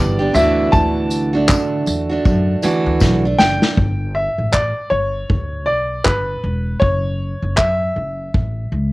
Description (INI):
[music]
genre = acoustic pop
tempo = 79 BPM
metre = 4/4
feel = swing 60% on 16ths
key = unclear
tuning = A4 = 441 Hz
[part]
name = clear upright piano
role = melody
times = 0.0-8.9 s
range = B4 to A5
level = -20 LUFS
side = equal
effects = none
[part]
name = felt-muted upright piano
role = accompaniment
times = 0.0-3.8 s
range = D4 to E5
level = -30 LUFS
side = left 3 dB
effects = none
[part]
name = picked steel-string acoustic guitar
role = accompaniment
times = 0.0-3.8 s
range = D3 to G4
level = -18 LUFS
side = right 3 dB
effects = none
[part]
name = upright bass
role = bass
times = 0.0-8.9 s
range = E1 to D3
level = -21 LUFS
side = equal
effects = none
[part]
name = unplugged drum kit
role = drums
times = 0.4-8.6 s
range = handclaps, kick drum, snare drum, tambourine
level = -18 LUFS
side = equal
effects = cassette tape
[part]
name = tambourine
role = percussion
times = 0.4-3.6 s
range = none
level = -34 LUFS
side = left 5 dB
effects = none
[sound]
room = little or no reverb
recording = home recording on cassette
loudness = -15 LUFS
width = side -20 dB against mid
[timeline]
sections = 0.0-3.8 A section; 3.8-8.9 B section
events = drum fill 3.0-3.8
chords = 0.4 Dadd9; 3.8 G; 6.8 F#m7